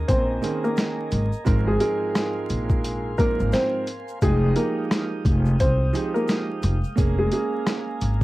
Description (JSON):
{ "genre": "hip hop, boom-bap hip-hop", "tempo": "87 BPM", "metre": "4/4", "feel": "swing 60% on 16ths", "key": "Ab major", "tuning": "A4 = 440 Hz", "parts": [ { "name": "dark grand piano", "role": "accompaniment", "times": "0.0-8.2 s", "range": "Ab2 to G5", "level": "-29 LUFS", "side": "right 5 dB", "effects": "cassette tape, high-pass filter, low-pass filter" }, { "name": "mellow tonewheel organ", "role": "sustained chords", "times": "0.0-8.2 s", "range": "Ab3 to Eb6", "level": "-36 LUFS", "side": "left 1 dB", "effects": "slow rotary speaker, high-pass filter, low-pass filter, cassette tape" }, { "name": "upright bass", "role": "bass", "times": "0.0-8.2 s", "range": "F1 to C2", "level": "-22 LUFS", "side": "equal", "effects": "transformer saturation" }, { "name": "warm upright piano", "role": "melody", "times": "0.1-8.2 s", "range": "Ab3 to C5", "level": "-26 LUFS", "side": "equal", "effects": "high-pass filter, low-pass filter, cassette tape" }, { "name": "boom bap sampler-style drum kit", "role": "drums", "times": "0.1-8.2 s", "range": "hi-hat, kick drum, rim click, snare drum", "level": "-24 LUFS", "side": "equal", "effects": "none" }, { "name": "egg shaker", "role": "percussion", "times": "0.1-8.2 s", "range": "none", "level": "-52 LUFS", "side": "left 11 dB", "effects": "none" } ], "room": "light reverb", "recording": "home recording on cassette, vinyl crackle", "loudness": "-20 LUFS", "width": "side -18 dB against mid", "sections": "0.0-8.2 A section", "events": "none", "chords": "0.0 Eb7sus4; 1.5 Ab69; 4.2 Fm9; 7.0 Bbm7/F" }